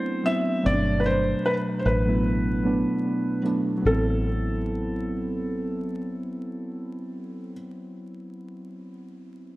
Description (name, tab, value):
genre	lo-fi hip hop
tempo	75 BPM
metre	4/4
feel	swing 57% on 16ths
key	A dorian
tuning	A4 = 441 Hz
part	felt-muted upright piano	melody	0.0-7.5 s	A4 to E5	-28 LUFS	equal	tape echo
part	muted felt-like synth keys	accompaniment	0.0-9.6 s	B2 to E4	-27 LUFS	equal	chorus, cassette tape, tape echo
part	deep dub fingered electric bass	bass	0.7-7.5 s	G1 to A1	-26 LUFS	equal	none
room	wet spring reverb, RT60 1.9 s, studio reverb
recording	echo-heavy mix, vinyl crackle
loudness	-23 LUFS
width	side -18 dB against mid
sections	0.0-3.8 A section; 3.8-7.0 B section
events	none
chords	0.0 Am69; 0.6 Gmaj7; 3.8 Am69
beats	| 0.65 1.45 2.25 3.04 | 3.85 4.64 5.45 6.25